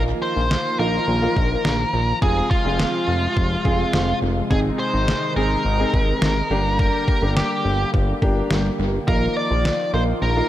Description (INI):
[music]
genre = synth-pop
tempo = 105 BPM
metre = 4/4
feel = straight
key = unclear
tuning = A4 = 440 Hz
[part]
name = clear concert grand piano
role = accompaniment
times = 0.0-10.5 s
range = Bb3 to Ab4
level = -27 LUFS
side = right 1 dB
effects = none
[part]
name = brassy analog pad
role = sustained chords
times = 0.0-10.5 s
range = C3 to G4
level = -27 LUFS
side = left 1 dB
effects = chorus
[part]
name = fat analog bass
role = bass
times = 0.0-10.4 s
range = F1 to Bb1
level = -22 LUFS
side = equal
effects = none
[part]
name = smooth overdriven lead guitar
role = melody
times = 0.2-10.5 s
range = F4 to D5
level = -24 LUFS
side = equal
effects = dub echo
[part]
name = detuned 8-bit digital drum machine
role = drums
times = 0.5-9.8 s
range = kick drum, snare drum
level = -24 LUFS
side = equal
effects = overdrive, dub echo
[sound]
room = light reverb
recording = echo-heavy mix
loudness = -18 LUFS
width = side -13 dB against mid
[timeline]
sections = 0.0-10.5 A section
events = none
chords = 0.0 Bbsus4; 2.2 Fm; 4.5 Ab; 6.5 Gm; 9.1 Bbsus4